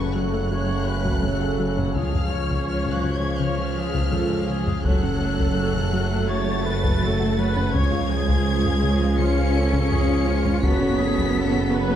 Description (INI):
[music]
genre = cinematic, hybrid orchestral and electronic film score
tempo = 83 BPM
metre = 4/4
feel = straight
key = F# harmonic minor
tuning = A4 = 440 Hz
[part]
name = warm symphonic violin section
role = melody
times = 0.0-12.0 s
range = C#6 to C#7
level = -32 LUFS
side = left 3 dB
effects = none
[part]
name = rich studio violin section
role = second line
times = 0.0-12.0 s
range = E#4 to F#5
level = -33 LUFS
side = left 3 dB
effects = none
[part]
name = warm symphonic viola section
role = accompaniment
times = 0.0-12.0 s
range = E#4 to C#5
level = -31 LUFS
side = equal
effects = none
[part]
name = mellow trombone section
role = sustained chords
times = 0.0-12.0 s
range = C#3 to A3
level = -33 LUFS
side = right 4 dB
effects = none
[part]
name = metallic inharmonic drone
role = sustained chords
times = 0.0-12.0 s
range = C#3 to C#5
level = -31 LUFS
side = equal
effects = chorus, built-in reverb, phaser
[part]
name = warm French horn section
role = sustained chords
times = 0.0-12.0 s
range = C#4 to F#4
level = -32 LUFS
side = left 3 dB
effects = none
[part]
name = mellow tuba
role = bass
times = 0.0-12.0 s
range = F#1 to C#2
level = -29 LUFS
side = right 4 dB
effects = none
[part]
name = warm sub bass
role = bass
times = 0.0-12.0 s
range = F#1 to C#2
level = -30 LUFS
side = left 1 dB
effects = none
[part]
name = warm symphonic cello section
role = bass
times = 0.0-12.0 s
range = C#3 to C#4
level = -29 LUFS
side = right 1 dB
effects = none
[part]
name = warm symphonic double bass section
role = bass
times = 0.0-12.0 s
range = C#2 to F#2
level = -28 LUFS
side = right 2 dB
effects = none
[part]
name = soft round pluck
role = arpeggios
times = 0.2-12.0 s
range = C#3 to F#4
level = -32 LUFS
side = left 4 dB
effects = chorus, digital delay
[part]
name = taiko ensemble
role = drums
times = 1.1-11.9 s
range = none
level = -26 LUFS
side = left 1 dB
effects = none
[sound]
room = moderate scoring stage reverb, RT60 1.6 s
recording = dark, warm production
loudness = -20 LUFS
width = side -10 dB against mid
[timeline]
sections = 0.0-12.0 A section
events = none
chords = 0.0 F#m; 2.0 C#; 4.9 F#m; 7.7 C#; 10.6 F#m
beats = 0.51 1.24 | 1.96 2.68 3.41 4.13 | 4.85 5.58 6.30 7.02 | 7.74 8.47 9.19 9.91 | 10.63 11.36